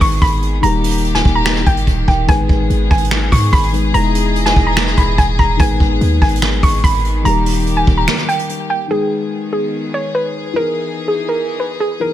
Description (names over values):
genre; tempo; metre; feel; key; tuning
hip hop, trap; 145 BPM; 4/4; half-time; G# harmonic minor; A4 = 440 Hz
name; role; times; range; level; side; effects
soft round pluck; melody; 0.0-12.1 s; G#4 to C#6; -19 LUFS; equal; chorus
dark grand piano; accompaniment; 0.0-12.1 s; D#3 to B4; -22 LUFS; left 6 dB; none
warm symphonic string section; sustained chords; 0.0-12.1 s; D#3 to D#5; -23 LUFS; left 2 dB; none
warm 808-style bass; bass; 0.0-8.1 s; D#1 to G#2; -16 LUFS; equal; none
vintage brush drum kit; drums; 0.0-8.6 s; finger snaps, hi-hat, kick drum, rim click, snare drum; -16 LUFS; right 1 dB; none
room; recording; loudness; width
small room ambience; none; -13 LUFS; side -12 dB against mid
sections
0.0-8.9 A section; 8.9-12.1 B section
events
break 8.1-8.9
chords
0.0 G#m; 0.6 D#; 2.3 G#m; 3.9 Emaj7; 5.6 G#m; 7.3 D#; 8.9 G#m; 10.6 Emaj7